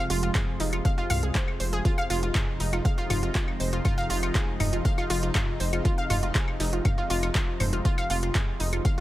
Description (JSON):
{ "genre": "melodic techno", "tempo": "120 BPM", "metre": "4/4", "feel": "straight", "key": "F minor", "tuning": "A4 = 440 Hz", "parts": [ { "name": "lush unison pad", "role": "sustained chords", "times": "0.0-9.0 s", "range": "C3 to F4", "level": "-35 LUFS", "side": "equal", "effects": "chorus, phaser, sidechain pumping" }, { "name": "analog pluck", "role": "arpeggios", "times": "0.0-9.0 s", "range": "Eb4 to F5", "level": "-31 LUFS", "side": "equal", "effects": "chorus, sidechain pumping, tape echo" }, { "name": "analog drone", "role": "drone", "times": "0.0-9.0 s", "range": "F2 to C3", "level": "-38 LUFS", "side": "left 1 dB", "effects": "chorus, sidechain pumping" }, { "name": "round analog bass", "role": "bass", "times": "0.1-8.8 s", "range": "F1 to C2", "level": "-28 LUFS", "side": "equal", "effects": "sidechain pumping" }, { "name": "deep house drum kit", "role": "drums", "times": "0.1-9.0 s", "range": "claves, handclaps, hi-hat, toms", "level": "-31 LUFS", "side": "equal", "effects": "none" }, { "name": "dusty soul sampler-style drum kit", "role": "drums", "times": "0.1-9.0 s", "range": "hi-hat, snare drum, tambourine", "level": "-42 LUFS", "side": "right 1 dB", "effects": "none" }, { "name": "electronic kick drum", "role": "drums", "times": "0.3-9.0 s", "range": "none", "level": "-26 LUFS", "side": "equal", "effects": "none" } ], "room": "digital ambience", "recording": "none", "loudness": "-24 LUFS", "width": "side -15 dB against mid", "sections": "0.0-9.0 A section", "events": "none", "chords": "0.0 Fm", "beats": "0.35 0.85 1.35 | 1.85 2.35 2.85 3.35 | 3.85 4.35 4.85 5.35 | 5.85 6.35 6.85 7.35 | 7.85 8.35 8.85" }